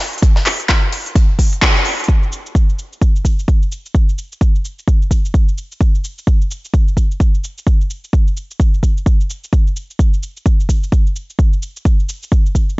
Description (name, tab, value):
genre	house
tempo	129 BPM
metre	4/4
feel	swing 60% on 16ths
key	none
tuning	none
part	tight metal drum kit	drums	0.0-2.0 s	hi-hat, snare drum	-27 LUFS	left 1 dB	high-pass filter on hats, high-pass filter on snare, high-pass filter on room
part	big-room dance drum kit	drums	0.1-12.8 s	handclaps, hi-hat, shaker	-20 LUFS	equal	none
part	electronic kick drum	drums	0.2-12.7 s	none	-12 LUFS	equal	none
room	little or no reverb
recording	nothing above 7.8 kHz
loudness	-13 LUFS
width	side -22 dB against mid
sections	0.0-2.1 A section; 2.1-12.8 B section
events	band accent 1.6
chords	none